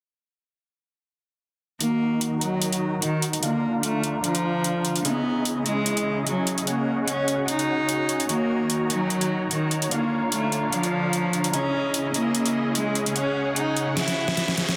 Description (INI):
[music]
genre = heavy wobble dubstep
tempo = 148 BPM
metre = 4/4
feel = swing 54% on 16ths, half-time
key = unclear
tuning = A4 = 440 Hz
[part]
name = rich cello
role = melody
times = 1.8-14.7 s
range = Eb3 to Fb4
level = -27 LUFS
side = equal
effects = tape echo
[part]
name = supersaw chords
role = sustained chords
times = 1.8-14.8 s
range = Db3 to Bb5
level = -30 LUFS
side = equal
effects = low-pass filter
[part]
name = dubstep drum kit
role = drums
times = 1.8-14.8 s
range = hi-hat, snare drum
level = -29 LUFS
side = equal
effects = overdrive
[part]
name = warbly tape-like pad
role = texture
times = 2.4-14.8 s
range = Db4 to Bb5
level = -35 LUFS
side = equal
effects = chorus, built-in reverb, phaser
[sound]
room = moderate lush hall reverb, RT60 2.1 s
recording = dense, heavily limited modern master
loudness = -24 LUFS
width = mono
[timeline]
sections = 1.8-14.8 A section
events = filter sweep on supersaw synth 1.8-14.8; drum fill 14.0-14.8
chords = 1.8 Ebm; 3.4 Bb/D; 5.0 Dbmadd9; 6.7 Gbsus2/Db; 8.3 Ebm; 9.9 Bb/D; 11.5 Dbmadd9; 13.2 Gbsus2/Db